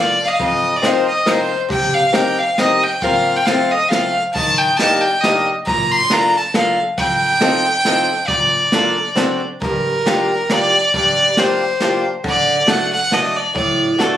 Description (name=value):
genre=musette waltz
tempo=137 BPM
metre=3/4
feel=swing 54% on 8ths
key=G harmonic minor from 9.6 s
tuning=A4 = 440 Hz
part: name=rich violin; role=melody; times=0.0-14.0 s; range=Bb4 to C6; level=-15 LUFS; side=equal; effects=none
part: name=fingerpicked swing-style acoustic guitar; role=accompaniment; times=0.0-14.2 s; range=F2 to Bb4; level=-19 LUFS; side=left 1 dB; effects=none
part: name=jazz brush drum kit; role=drums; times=0.4-14.1 s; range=hi-hat, kick drum, snare drum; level=-23 LUFS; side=equal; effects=none
room=little or no reverb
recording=recorded on a phone in the room, studio reverb, compression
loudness=-13 LUFS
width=side -11 dB against mid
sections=0.0-9.6 A section; 9.6-14.2 B section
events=none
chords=0.4 F7sus4; 1.7 Cm7; 3.0 Fsus4; 3.5 F; 4.3 Ebmaj7; 5.7 Bbmaj7; 7.0 F7; 8.3 Bbmaj7; 9.2 D7; 9.6 Gm7; 12.2 D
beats=| 0.39 0.83 1.26 | 1.70 2.14 2.58 | 3.02 3.46 3.90 | 4.35 4.79 5.23 | 5.67 6.11 6.54 | 6.98 7.41 7.85 | 8.29 8.72 9.17 | 9.62 10.06 10.50 | 10.93 11.37 11.80 | 12.24 12.68 13.12 | 13.56 14.00